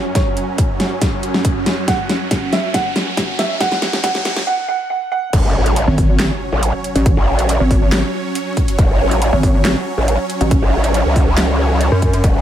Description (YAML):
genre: heavy wobble dubstep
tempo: 139 BPM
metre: 4/4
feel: half-time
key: F# minor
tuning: A4 = 440 Hz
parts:
  - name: supersaw chords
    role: sustained chords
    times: 0.0-12.4 s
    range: F#2 to C#5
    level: -22 LUFS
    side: right 2 dB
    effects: phaser, sidechain pumping
  - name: riser and impact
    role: sound effects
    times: 0.3-7.1 s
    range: none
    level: -26 LUFS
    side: equal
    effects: none
  - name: dark baby grand piano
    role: melody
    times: 0.2-5.3 s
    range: C#5 to F#5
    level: -21 LUFS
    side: right 4 dB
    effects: ping-pong delay
  - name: dubstep drum kit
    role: drums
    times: 0.2-12.3 s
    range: crash cymbal, handclaps, hi-hat, snare drum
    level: -20 LUFS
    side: equal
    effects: none
  - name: electronic kick drum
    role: drums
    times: 0.2-12.3 s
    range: none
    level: -16 LUFS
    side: equal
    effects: none
  - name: growl bass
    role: bass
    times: 5.3-12.4 s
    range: F#1 to C#2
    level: -15 LUFS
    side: equal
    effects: chorus, overdrive
  - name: pulsing pluck wobble bass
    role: bass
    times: 5.9-12.2 s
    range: G#1 to F#2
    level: -15 LUFS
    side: equal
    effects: chorus, overdrive
room: light reverb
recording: high-pass filter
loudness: -14 LUFS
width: side -11 dB against mid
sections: 0.0-5.3 A section; 5.3-12.4 B section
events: build-up 0.0-5.3; drum fill 0.0-4.5; filter sweep 0.0-5.3; riser 0.3-4.5; break 4.5-5.3; drop 5.3-12.4; impact 5.3-7.1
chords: 0.0 F#5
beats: | 0.15 0.58 1.01 1.45 | 1.88 2.31 2.74 3.17 | 3.60 4.04 4.47 4.90 | 5.33 5.76 6.20 6.63 | 7.06 7.49 7.92 8.35 | 8.79 9.22 9.65 10.08 | 10.51 10.94 11.38 11.81 | 12.24